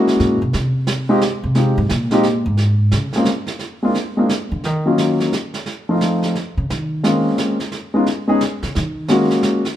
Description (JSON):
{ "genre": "jazz piano trio", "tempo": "175 BPM", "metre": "3/4", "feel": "swing 64% on 8ths", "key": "Bb minor", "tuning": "A4 = 440 Hz", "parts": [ { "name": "warm grand piano", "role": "melody", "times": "0.0-9.6 s", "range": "F3 to Ab4", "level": "-16 LUFS", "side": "left 1 dB", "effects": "none" }, { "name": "snare drum and brushed snare drum", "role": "drums", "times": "0.1-9.8 s", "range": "none", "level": "-25 LUFS", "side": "right 3 dB", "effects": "none" }, { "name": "upright bass", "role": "bass", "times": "0.2-9.3 s", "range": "Ab2 to Eb3", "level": "-19 LUFS", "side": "equal", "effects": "none" } ], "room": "moderate large studio reverb, RT60 1.3 s", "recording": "minimal, uncompressed stereo recording", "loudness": "-16 LUFS", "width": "side -11 dB against mid", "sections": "0.0-2.6 A section; 2.6-9.8 A section", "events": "upright bass solo 0.0-9.8", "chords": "0.0 Gb9; 0.5 Fm7 (rootless); 2.6 Bbm7 (rootless); 3.6 Bb7; 4.6 Ebm7; 5.7 F7; 6.7 Bbm7; 7.7 Db7(no3); 8.7 Gbmaj7" }